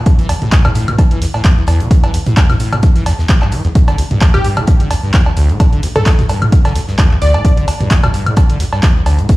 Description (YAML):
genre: acid house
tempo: 130 BPM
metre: 4/4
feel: swing 55% on 16ths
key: E phrygian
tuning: A4 = 440 Hz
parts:
  - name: acid bass, saw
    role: riff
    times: 0.0-9.3 s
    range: D2 to E3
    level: -16 LUFS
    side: equal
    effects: lush chorus, cassette tape
  - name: damped 70s drum kit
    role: drums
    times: 0.1-9.4 s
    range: hi-hat, snare drum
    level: -34 LUFS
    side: left 3 dB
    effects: none
  - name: electronic kick drum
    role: drums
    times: 0.1-9.4 s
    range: none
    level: -10 LUFS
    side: equal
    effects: none
  - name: punchy analog drum machine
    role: drums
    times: 0.1-9.4 s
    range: cowbell, handclaps, hi-hat, toms, woodblock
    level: -18 LUFS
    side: right 1 dB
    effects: none
  - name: plucky unison lead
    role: melody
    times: 4.3-7.6 s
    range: G4 to D5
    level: -21 LUFS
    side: left 1 dB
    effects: dub echo
room: light reverb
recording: played on a big sound system in a bare room, large studio reverb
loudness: -10 LUFS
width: side -18 dB against mid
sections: 0.0-9.4 A section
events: none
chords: none